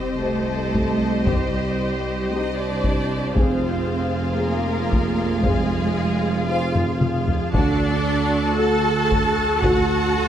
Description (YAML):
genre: cinematic, epic orchestral film score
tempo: 115 BPM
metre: 4/4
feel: straight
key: unclear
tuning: A4 = 435 Hz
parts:
  - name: warm symphonic violin section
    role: melody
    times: 0.0-10.3 s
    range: Eb5 to A5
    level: -31 LUFS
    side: left 3 dB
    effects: none
  - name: clear symphonic violin section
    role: second line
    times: 0.0-10.3 s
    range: G4 to A5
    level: -30 LUFS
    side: left 3 dB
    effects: none
  - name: rich symphonic viola section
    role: accompaniment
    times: 0.0-10.3 s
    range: F4 to C5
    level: -28 LUFS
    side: equal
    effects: none
  - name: dark tuba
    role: bass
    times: 0.0-10.3 s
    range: F1 to D2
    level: -26 LUFS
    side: right 1 dB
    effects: none
  - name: rich studio cello section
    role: bass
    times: 0.0-10.3 s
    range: G3 to A4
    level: -25 LUFS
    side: right 2 dB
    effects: none
  - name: rich studio double bass section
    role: bass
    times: 0.0-10.3 s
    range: C2 to F2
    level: -28 LUFS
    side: right 3 dB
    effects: none
  - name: sub drop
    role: sound effects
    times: 0.0-1.3 s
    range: none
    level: -40 LUFS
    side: left 1 dB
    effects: none
  - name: mellow French horn section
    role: sustained chords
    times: 0.2-9.8 s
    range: F#4 to C5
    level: -29 LUFS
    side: left 4 dB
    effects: none
  - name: taiko ensemble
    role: drums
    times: 0.7-10.1 s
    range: none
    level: -23 LUFS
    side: left 1 dB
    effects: none
room: moderate scoring stage reverb, RT60 1.7 s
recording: none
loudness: -18 LUFS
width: side -10 dB against mid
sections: 0.0-10.3 A section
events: impact 0.0-1.3; drum fill 6.7-7.5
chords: 0.0 Cm; 3.4 Fm; 7.5 D